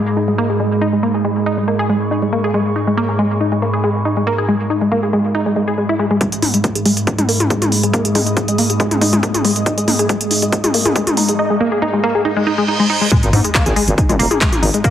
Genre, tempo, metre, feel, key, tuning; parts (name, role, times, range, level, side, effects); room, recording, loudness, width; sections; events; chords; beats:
driving peak-time techno; 139 BPM; 4/4; straight; A4 = 441 Hz
metallic inharmonic drone; drone; 0.0-14.9 s; G#2; -22 LUFS; equal; chorus, built-in reverb, sidechain pumping
deep dark ambient pad; texture; 0.0-11.4, 14.2-14.9 s; G#3 to D#6; -22 LUFS; right 2 dB; chorus, built-in reverb, sidechain pumping
tight sequenced synth; riff; 0.2-14.9 s; G#3 to G#4; -17 LUFS; left 1 dB; chorus, sidechain pumping, dub echo
electronic kick drum; drums; 6.2-14.9 s; -18 LUFS; equal; high-pass filter on kick, high-pass filter on room
techno drum kit; drums; 6.2-14.9 s; handclaps, hi-hat, toms; -18 LUFS; equal; low-pass filter on cymbals, low-pass filter on hats, low-pass filter on toms, low-pass filter on snare, low-pass filter on room
reverse cymbal and sub drop; sound effects; 12.4-14.8 s; -22 LUFS; right 2 dB
growling FM bass; bass; 13.2-14.7 s; D#1 to G#2; -16 LUFS; equal; sidechain pumping
moderate digital room reverb, RT60 1.1 s, digital ambience; heavily compressed radio sound; -13 LUFS; side -10 dB against mid
0.0-6.2 A section; 6.2-13.1 B section; 13.1-14.9 C section
build-up 6.2-13.1; filter sweep on synth arpeggio sound 6.2-13.1; drum fill 9.7-11.4; reverse cymbal 12.4-13.1; drop 13.1-14.9; impact 13.1-14.8
0.0 G#5
0.17 0.60 | 1.03 1.46 1.89 2.32 | 2.76 3.19 3.62 4.05 | 4.48 4.91 5.35 5.78 | 6.21 6.64 7.07 7.50 | 7.94 8.37 8.80 9.23 | 9.66 10.09 10.53 10.96 | 11.39 11.82 12.25 12.68 | 13.12 13.55 13.98 14.41 | 14.84